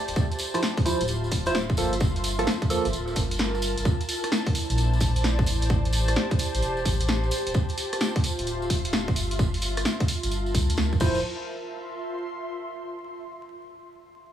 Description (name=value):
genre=UK garage, two-step garage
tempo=130 BPM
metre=4/4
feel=swing 65% on 16ths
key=D minor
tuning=A4 = 440 Hz
part: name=ethereal airy pad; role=texture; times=0.0-13.0 s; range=E4 to C6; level=-32 LUFS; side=equal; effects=ensemble chorus, built-in reverb, sidechain pumping
part: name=dark detuned saw bass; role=bass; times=0.1-11.2 s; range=D1 to G2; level=-27 LUFS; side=equal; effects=none
part: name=punchy analog drum machine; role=drums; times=0.1-11.1 s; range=crash cymbal, hi-hat, rim click, snare drum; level=-30 LUFS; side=left 1 dB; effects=none
part: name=tambourine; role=percussion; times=0.1-11.2 s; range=none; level=-35 LUFS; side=right 2 dB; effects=none
part: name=electronic kick drum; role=drums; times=0.2-11.1 s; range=none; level=-25 LUFS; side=equal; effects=none
part: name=barky tine electric piano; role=stabs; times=0.5-2.9, 11.0-11.2 s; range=F3 to C5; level=-29 LUFS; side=right 2 dB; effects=phaser, dub echo
room=light reverb, digital ambience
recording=vinyl crackle, studio ambience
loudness=-23 LUFS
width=side -10 dB against mid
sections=0.0-11.2 A section; 11.2-13.1 B section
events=none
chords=0.0 Dm9; 1.8 Gm9; 3.9 Bbmaj9#11; 5.5 Am7; 7.3 Dm9; 9.2 Gm9; 11.0 Dm9; 11.2 Cadd11/F